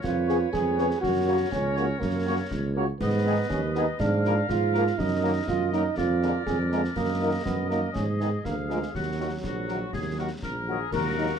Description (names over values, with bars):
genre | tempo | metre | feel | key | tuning
military-style march for wind band | 121 BPM | 2/4 | straight | Eb minor | A4 = 440 Hz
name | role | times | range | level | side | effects
clear euphonium | second line | 0.0-10.6 s | Gb3 to Ab4 | -29 LUFS | right 5 dB | none
clear woodwind section | second line | 0.0-11.4 s | Gb4 to Gb5 | -34 LUFS | left 2 dB | none
warm tuba | bass | 0.0-11.3 s | Bb1 to Ab2 | -28 LUFS | right 2 dB | none
concert snare drum, concert bass drum and clash cymbals | drums | 0.0-11.4 s | none | -36 LUFS | left 2 dB | none
mellow trumpet section | melody | 0.3-11.4 s | Ab4 to Db5 | -35 LUFS | left 4 dB | none
mellow French horn section | accompaniment | 0.3-11.3 s | F3 to Ab4 | -31 LUFS | left 3 dB | none
clear trombone section | sustained chords | 0.3-11.4 s | Db3 to Cb4 | -34 LUFS | equal | none
small flute group | second line | 10.7-11.4 s | Ab4 to Bb4 | -31 LUFS | left 10 dB | none
room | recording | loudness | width
light reverb | dark, warm production | -24 LUFS | side -7 dB against mid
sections
0.0-10.9 A section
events
none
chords
0.0 Db7/F; 1.0 Gb; 3.0 Abm; 4.0 Bb7/Ab; 5.0 Ebm/Gb; 6.0 Bb7/F; 7.0 Ebm/Gb; 8.0 Abm; 8.4 Bb7/D; 8.9 Ebm